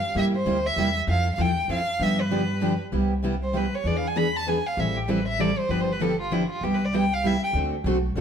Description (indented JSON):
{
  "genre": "acoustic string swing (jazz manouche)",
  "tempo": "195 BPM",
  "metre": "3/4",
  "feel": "swing 58% on 8ths",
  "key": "C major",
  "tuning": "A4 = 441 Hz",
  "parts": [
    { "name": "rich violin", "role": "melody", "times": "0.0-7.5 s", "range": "E4 to B5", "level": "-27 LUFS", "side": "equal", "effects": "none" },
    { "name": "picked steel-string acoustic guitar", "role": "accompaniment", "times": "0.1-8.2 s", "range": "C3 to A4", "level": "-28 LUFS", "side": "left 4 dB", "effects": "none" },
    { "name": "upright bass", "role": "bass", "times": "0.1-8.2 s", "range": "G1 to G2", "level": "-28 LUFS", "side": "equal", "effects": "none" },
    { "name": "picked steel-string acoustic guitar", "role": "accompaniment", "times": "0.2-8.2 s", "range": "C3 to B4", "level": "-29 LUFS", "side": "right 5 dB", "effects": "none" }
  ],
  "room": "moderate stone room reverb, RT60 1.1 s",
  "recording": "band playing live in one room",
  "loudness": "-22 LUFS",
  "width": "side -8 dB against mid",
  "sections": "0.0-2.9 A section; 2.9-8.2 B section",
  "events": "violin solo 2.9-8.2",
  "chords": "0.2 C7; 1.1 Fmaj7; 2.0 G7; 2.9 Cmaj7; 3.9 E7; 4.8 Am7; 5.7 G7; 6.6 Cmaj7; 7.5 D7",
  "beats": "| 0.15 0.46 0.77 | 1.08 1.39 1.70 | 2.00 2.31 2.62 | 2.93 3.23 3.54 | 3.85 4.16 4.47 | 4.77 5.08 5.39 | 5.70 6.01 6.31 | 6.62 6.93 7.24 | 7.54 7.85 8.16"
}